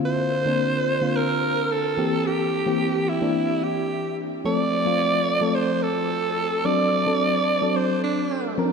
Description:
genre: pop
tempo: 109 BPM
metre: 4/4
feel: straight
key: unclear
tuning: A4 = 440 Hz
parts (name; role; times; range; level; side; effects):
- FM electric piano with auto-pan; accompaniment; 0.0-8.7 s; D3 to Bb4; -24 LUFS; left 2 dB; shimmer reverb
- raspy alto saxophone; melody; 0.1-8.6 s; D4 to D5; -23 LUFS; right 2 dB; shimmer reverb, tape echo
room: wet plate reverb, RT60 2.9 s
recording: dreamy mix soaked in reverb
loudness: -20 LUFS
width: side -5 dB against mid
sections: 0.0-8.7 A section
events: none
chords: 0.0 Bbadd9; 2.0 C7; 4.5 F; 6.7 D7/F#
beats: | 0.05 0.60 1.15 1.70 | 2.25 2.81 3.35 3.91 | 4.46 5.01 5.56 6.11 | 6.66 7.21 7.76 8.31

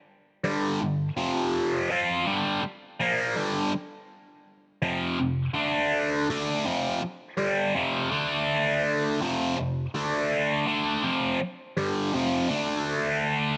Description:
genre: rock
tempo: 55 BPM (dotted quarters)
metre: 6/8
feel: straight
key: G minor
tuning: A4 = 441 Hz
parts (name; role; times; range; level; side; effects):
- overdriven electric guitar; solo; 0.4-13.6 s; F2 to F4; -27 LUFS; equal; phaser
room: light reverb, digital ambience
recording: none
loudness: -27 LUFS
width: mono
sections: 0.0-13.6 A section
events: none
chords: 0.0 G5; 1.2 F5; 1.9 Gm; 4.8 F5; 5.5 D5; 6.3 F5; 8.1 D5; 9.2 F5; 9.9 D5; 10.7 F5; 12.5 D5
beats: | 0.43 1.53 | 2.62 3.72 | 4.82 5.91 | 7.01 8.11 | 9.20 10.30 | 11.39 12.49

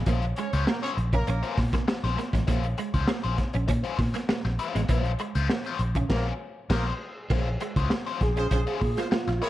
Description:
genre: funk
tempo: 99 BPM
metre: 4/4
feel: straight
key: Bb minor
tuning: A4 = 440 Hz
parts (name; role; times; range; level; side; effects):
- clean electric guitar; riff; 0.0-9.3 s; Ab3 to Db4; -35 LUFS; right 7 dB; ensemble chorus
- vintage muted fingered electric bass; bass; 0.0-9.4 s; A1 to Bb2; -27 LUFS; equal; none
- biting overdriven guitar; accompaniment; 0.1-9.5 s; Ab3 to C5; -33 LUFS; left 7 dB; wah, spring reverb, plate reverb
- crunchy breakbeat drum kit; drums; 0.1-9.5 s; crash cymbal, hi-hat, kick drum, snare drum; -28 LUFS; equal; none
- clear horn section; second line; 0.4-1.5, 6.1-9.5 s; Ab3 to Db5; -34 LUFS; right 1 dB; plate reverb
- tonewheel organ; melody; 8.2-9.5 s; F4 to Bb4; -29 LUFS; right 2 dB; chorus vibrato, slow rotary speaker, plate reverb
room: light reverb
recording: dark, warm production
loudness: -24 LUFS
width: side -15 dB against mid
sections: 0.0-7.3 A section; 7.3-9.5 B section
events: band accent 6.1-7.3; tonewheel organ solo 7.3-9.5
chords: 0.0 Bbm9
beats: | 0.07 0.67 1.27 1.88 | 2.48 3.08 3.69 4.29 | 4.89 5.50 6.10 6.70 | 7.30 7.91 8.51 9.12

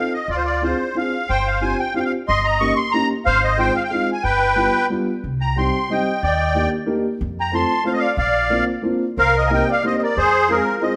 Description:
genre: musette waltz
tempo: 183 BPM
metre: 3/4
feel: rubato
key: C minor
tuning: A4 = 440 Hz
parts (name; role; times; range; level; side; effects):
- musette accordion; melody; 0.0-11.0 s; F4 to Db6; -21 LUFS; equal; none
- dark upright piano; accompaniment; 0.0-11.0 s; G3 to A4; -26 LUFS; equal; none
- upright bass; bass; 0.3-10.6 s; G1 to F2; -27 LUFS; equal; none
- trumpet with bucket mute; second line; 5.4-11.0 s; F4 to A5; -28 LUFS; equal; none
room: wet stone room reverb, RT60 1.2 s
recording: band playing live in one room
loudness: -19 LUFS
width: mono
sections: 0.0-11.0 A section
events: none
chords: 0.3 Dm7b5; 1.3 G7sus4; 2.3 Eb7/G; 3.2 Ab6; 4.2 G7; 5.2 Cm; 6.2 Ebmaj7; 7.2 F; 8.2 Bbadd9; 9.2 Cm7; 10.2 Fm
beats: | 0.28 0.61 0.95 | 1.28 1.62 1.95 | 2.28 2.60 2.93 | 3.25 3.58 3.90 | 4.23 4.56 4.90 | 5.24 5.57 5.91 | 6.23 6.56 6.88 | 7.21 7.53 7.85 | 8.18 8.50 8.84 | 9.17 9.51 9.84 | 10.16 10.48 10.80

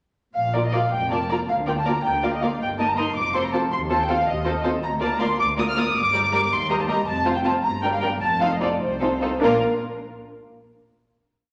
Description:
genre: quick classical-period movement for string orchestra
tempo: 107 BPM (dotted quarters)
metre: 6/8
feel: straight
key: Bb major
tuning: A4 = 441 Hz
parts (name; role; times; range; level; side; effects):
- muted symphonic violin section; melody; 0.3-9.6 s; Bb4 to F6; -25 LUFS; equal; none
- muted studio cello section; bass; 0.4-9.6 s; C2 to D3; -34 LUFS; equal; none
- muted studio double bass section; bass; 0.4-9.6 s; F1 to Eb2; -34 LUFS; equal; none
- muted studio violin section; second line; 0.5-9.7 s; F4 to Eb5; -31 LUFS; equal; none
- muted studio viola section; accompaniment; 0.5-9.6 s; G3 to G4; -30 LUFS; equal; none
room: wet recital hall reverb, RT60 1.6 s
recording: none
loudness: -22 LUFS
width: mono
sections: 0.4-9.4 theme; 9.4-10.6 final chord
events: slowing down 6.5-9.4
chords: 0.4 Bb; 1.5 Bb/D; 2.6 Eb/G; 3.2 F; 3.7 F7/Eb; 4.8 Bb/D; 6.0 Gm; 6.5 Eb; 7.1 F5; 7.7 Gm; 8.2 F7; 9.4 Bb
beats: | 0.35 0.92 | 1.49 2.05 | 2.61 3.17 | 3.73 4.28 | 4.84 5.40 | 5.96 6.52 | 7.08 7.65 | 8.23 8.81 | 9.42

